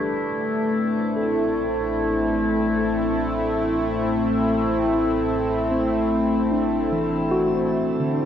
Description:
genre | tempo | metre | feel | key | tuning
ambient | 56 BPM | 4/4 | straight | A minor | A4 = 440 Hz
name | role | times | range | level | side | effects
warm analog pad | sustained chords | 0.0-8.3 s | A3 to A4 | -21 LUFS | left 1 dB | chorus, shimmer reverb
tine electric piano | arpeggios | 0.0-8.3 s | D3 to B4 | -28 LUFS | equal | auto-pan, diffuse ambient delay, shimmer reverb
deep rumbling drone | bass | 1.4-8.3 s | A1 | -34 LUFS | equal | built-in reverb
overtone-sweeping drone | drone | 0.0-8.3 s | A3 to E4 | -31 LUFS | equal | chorus, built-in reverb, phaser
room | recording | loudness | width
wet lush hall reverb, RT60 2.5 s | worn, warbling old tape, cassette tape, warbly pitch drift | -20 LUFS | side -9 dB against mid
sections
0.0-8.3 A section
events
none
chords
0.1 Amadd9

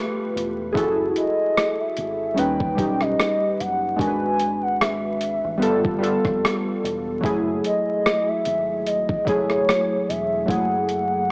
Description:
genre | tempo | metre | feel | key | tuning
lo-fi hip hop | 74 BPM | 4/4 | swing 55% on 16ths | F# dorian | A4 = 440 Hz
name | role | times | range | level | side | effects
warm analog keys | accompaniment | 0.0-11.3 s | F#3 to B4 | -23 LUFS | equal | chorus, low-pass filter, cassette tape
deep dub fingered electric bass | bass | 0.4-11.3 s | E1 to D#2 | -34 LUFS | equal | none
boom bap sampler-style drum kit | drums | 0.4-11.1 s | hi-hat, kick drum, rim click | -25 LUFS | equal | overdrive, cassette tape
hollow clarinet-like synth lead | melody | 1.2-11.3 s | C#5 to G#5 | -22 LUFS | equal | chorus, low-pass filter, cassette tape
room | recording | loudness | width
light reverb, digital ambience | home recording on cassette, vinyl crackle, small speaker sound | -19 LUFS | side -33 dB against mid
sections
0.0-11.3 A section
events
none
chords
0.0 G9; 0.7 F#m9; 2.4 D#7alt; 4.0 G#m7b5; 5.6 G9; 7.2 F#m9

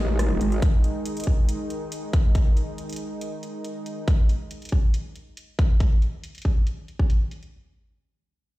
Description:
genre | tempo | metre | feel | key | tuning
heavy wobble dubstep | 139 BPM | 4/4 | half-time | unclear | A4 = 442 Hz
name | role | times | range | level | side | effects
lush unison pad | sustained chords | 0.0-4.0 s | D#3 to D#4 | -32 LUFS | right 1 dB | chorus, sidechain pumping
growl bass | bass | 0.0-0.6 s | G#1 to A1 | -22 LUFS | equal | chorus, overdrive
dubstep drum kit | drums | 0.2-7.5 s | hi-hat, rim click | -40 LUFS | equal | low-pass filter on hats, studio reverb, low-pass filter on cymbals, low-pass filter on snare
electronic kick drum | drums | 0.6-7.1 s | none | -19 LUFS | equal | overdrive, studio reverb
room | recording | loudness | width
little or no reverb | played on a big sound system in a bare room, stone room reverb | -22 LUFS | side -18 dB against mid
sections
0.0-7.5 A section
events
filter sweep on drum 0.0-7.5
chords
0.0 G#5

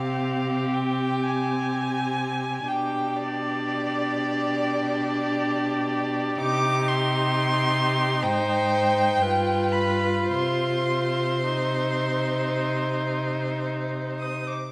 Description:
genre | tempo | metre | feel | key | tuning
classical, slow romantic movement for string quartet | 53-67 BPM | 4/4 | rubato | C minor | A4 = 442 Hz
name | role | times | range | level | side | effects
rich violin | melody | 0.0-14.7 s | D5 to Eb6 | -30 LUFS | equal | none
rich violin | second line | 0.0-14.5 s | G4 to C5 | -32 LUFS | equal | none
warm viola | accompaniment | 0.0-14.5 s | C4 to F4 | -31 LUFS | equal | none
rich cello | bass | 0.0-14.5 s | G2 to C3 | -32 LUFS | equal | none
room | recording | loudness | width
wet recital hall reverb, RT60 1.5 s | none | -25 LUFS | mono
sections
0.0-14.7 A section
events
none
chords
0.0 C5; 2.7 G/B; 6.4 Cm; 8.2 Abmaj7; 9.2 G7; 10.3 Cm

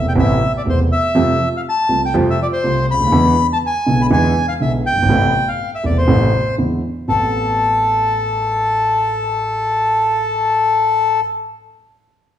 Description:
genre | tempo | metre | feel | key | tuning
tango | 121 BPM | 4/4 | rubato | A minor | A4 = 440 Hz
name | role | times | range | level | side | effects
bandoneon | melody | 0.0-11.2 s | A4 to B5 | -16 LUFS | left 2 dB | none
dark concert grand piano | accompaniment | 0.0-11.2 s | E1 to A4 | -17 LUFS | right 1 dB | none
room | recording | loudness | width
wet recital hall reverb, RT60 1.2 s | recorded in a church or concert hall | -14 LUFS | side -10 dB against mid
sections
0.0-7.1 A section; 7.1-11.0 B section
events
none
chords
0.0 Amadd9; 1.1 Fadd9; 3.1 E7; 5.1 Amadd9; 6.6 E7; 7.1 Amadd9

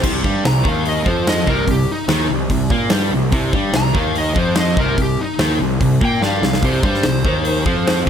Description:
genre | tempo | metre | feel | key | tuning
blues rock power trio and southern rock | 146 BPM | 4/4 | straight | C minor | A4 = 440 Hz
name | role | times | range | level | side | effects
sludgy distorted guitar | riff | 0.0-8.1 s | C3 to Bb3 | -19 LUFS | equal | overdrive
fuzz picked electric bass | bass | 0.0-8.1 s | C2 to Bb2 | -21 LUFS | equal | overdrive
huge arena drum kit | drums | 0.0-8.1 s | crash cymbal, hi-hat, kick drum, snare drum | -20 LUFS | equal | none
lead guitar through a small cranked amp | melody | 0.5-8.0 s | Eb4 to Bb5 | -23 LUFS | left 1 dB | overdrive
room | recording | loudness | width
little or no reverb | none | -14 LUFS | side -8 dB against mid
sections
0.0-8.1 A section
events
drum fill 6.2-6.6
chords
0.0 Cm

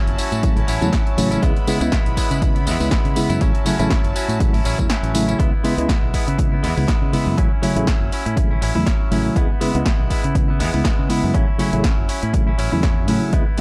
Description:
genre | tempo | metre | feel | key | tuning
filtered disco house | 121 BPM | 4/4 | swing 55% on 16ths | unclear | A4 = 440 Hz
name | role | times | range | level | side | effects
bright chamber string section | sustained chords | 0.0-5.4 s | E4 to B5 | -33 LUFS | equal | vintage 12-bit sampler grit, sidechain pumping, low-pass filter
direct-recorded clean electric guitar | riff | 0.0-13.6 s | F#3 to E4 | -28 LUFS | equal | sidechain pumping, low-pass filter
modern bright fingered electric bass | bass | 0.1-13.4 s | F#1 to C#3 | -26 LUFS | equal | sidechain pumping, low-pass filter
punchy analog drum machine | drums | 0.1-13.6 s | hi-hat, snare drum, tambourine | -30 LUFS | equal | sidechain pumping on hats, sidechain pumping on perc
mellow tine electric piano | accompaniment | 0.4-13.6 s | C#3 to E4 | -24 LUFS | equal | overdrive, phaser, sidechain pumping, low-pass filter
electronic kick drum | drums | 0.4-13.4 s | none | -22 LUFS | equal | none
room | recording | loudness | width
digital ambience | dry, gritty hardware recording, transformer saturation | -19 LUFS | mono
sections
0.0-5.4 A section; 5.4-13.6 B section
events
drop 0.0-5.4; kick drops out 4.9-5.4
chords
0.0 A6; 1.4 C#m7; 3.4 A6; 5.4 C#m7; 7.4 A6; 9.4 C#m7; 11.3 A6

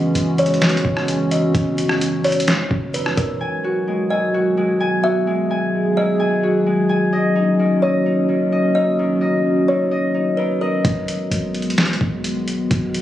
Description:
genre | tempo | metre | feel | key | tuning
hip hop, atmospheric cloud-rap | 129 BPM | 4/4 | half-time | G# minor | A4 = 440 Hz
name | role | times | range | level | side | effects
dark analog pad | sustained chords | 0.0-13.0 s | D#3 to G#4 | -19 LUFS | equal | chorus, sidechain pumping
clean 808-style bass | bass | 0.0-3.4, 10.8-13.0 s | E1 to G#1 | -26 LUFS | equal | none
trip hop sampler-style drum kit | drums | 0.2-3.3, 10.8-13.0 s | hi-hat, kick drum, rim click, snare drum | -22 LUFS | equal | none
kalimba | melody | 0.4-10.8 s | A#4 to E5 | -23 LUFS | left 1 dB | tape echo
Celtic harp | arpeggios | 3.4-12.8 s | D#3 to G#5 | -22 LUFS | left 1 dB | tape echo
room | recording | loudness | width
light reverb, digital ambience | recorded on a phone in the room, studio ambience | -16 LUFS | side -12 dB against mid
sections
0.0-3.4 A section; 3.4-10.8 B section; 10.8-13.0 C section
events
none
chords
0.0 F#9sus4; 3.4 G#m7; 7.1 D#m7; 10.8 G#m7

